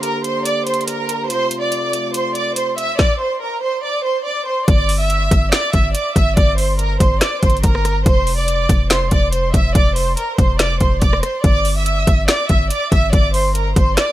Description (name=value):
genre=hip hop, trap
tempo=142 BPM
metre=4/4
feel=half-time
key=G dorian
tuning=A4 = 440 Hz
part: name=warm studio violin section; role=melody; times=0.0-14.1 s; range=Bb4 to E6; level=-19 LUFS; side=right 1 dB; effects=analog delay
part: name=mellow French horn section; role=sustained chords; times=0.0-3.0 s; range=C3 to G4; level=-25 LUFS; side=equal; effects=stereo widening
part: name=trap drum kit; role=drums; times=0.0-14.1 s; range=finger snaps, hi-hat, kick drum, rim click, snare drum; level=-16 LUFS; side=equal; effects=none
part: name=hard-hitting 808-style bass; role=bass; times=4.7-14.0 s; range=F1 to G1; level=-18 LUFS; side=equal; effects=none
room=studio ambience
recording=none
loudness=-14 LUFS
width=side -14 dB against mid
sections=0.0-4.7 A section; 4.7-14.1 B section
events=none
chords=0.0 Gm; 1.3 F; 4.7 Gm; 8.1 F5; 11.4 G5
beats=0.03 0.45 0.88 | 1.30 1.72 2.15 2.57 | 2.99 3.41 3.83 4.26 | 4.68 5.10 5.53 5.95 | 6.37 6.79 7.21 7.64 | 8.06 8.48 8.90 9.33 | 9.75 10.17 10.60 11.02 | 11.44 11.86 12.29 12.71 | 13.13 13.55 13.98